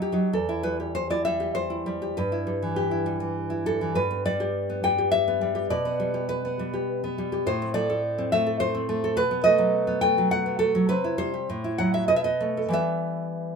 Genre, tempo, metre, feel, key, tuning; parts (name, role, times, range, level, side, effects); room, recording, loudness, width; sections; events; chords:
romantic piece for solo classical guitar; 89-107 BPM; 3/4; rubato; E minor; A4 = 444 Hz
nylon-string guitar; solo; 0.0-13.6 s; E2 to G5; -23 LUFS; equal
moderate studio reverb, RT60 0.5 s; minimal, uncompressed stereo recording; -23 LUFS; side -5 dB against mid
0.3-13.6 A section
0.3 Em; 2.2 Em/G; 4.0 G; 5.7 G/B; 7.5 Am; 9.2 B7; 10.9 C; 11.5 F#m7b5/A; 12.1 B7; 12.7 Em